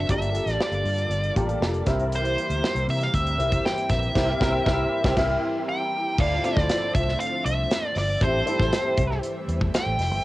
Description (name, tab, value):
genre	polished 1980s jazz-funk pop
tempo	118 BPM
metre	4/4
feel	straight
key	unclear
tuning	A4 = 440 Hz
part	nasal lead guitar with a parked wah	melody	0.0-10.2 s	C5 to G5	-27 LUFS	equal	overdrive, cassette tape
part	warm grand piano	accompaniment	0.0-10.2 s	Bb3 to E5	-27 LUFS	left 1 dB	ensemble chorus, cassette tape
part	lush unison pad	sustained chords	0.0-10.2 s	D3 to E5	-35 LUFS	equal	chorus, cassette tape
part	vintage muted fingered electric bass	bass	0.0-10.2 s	F1 to C3	-27 LUFS	equal	none
part	modern studio drum kit	drums	0.1-10.1 s	crash cymbal, hi-hat, kick drum, snare drum	-27 LUFS	equal	cassette tape
room	moderate small room reverb, RT60 0.6 s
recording	home recording on cassette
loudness	-21 LUFS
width	side -17 dB against mid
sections	0.0-6.2 A section; 6.2-10.2 B section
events	band accent 4.2-6.2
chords	0.1 Gm9; 1.9 C7; 6.2 Dm9; 8.2 Am7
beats	| 0.09 0.60 1.11 1.62 | 2.12 2.63 3.14 3.65 | 4.15 4.66 5.17 5.68 | 6.18 6.69 7.20 7.71 | 8.21 8.72 9.23 9.73 | 10.24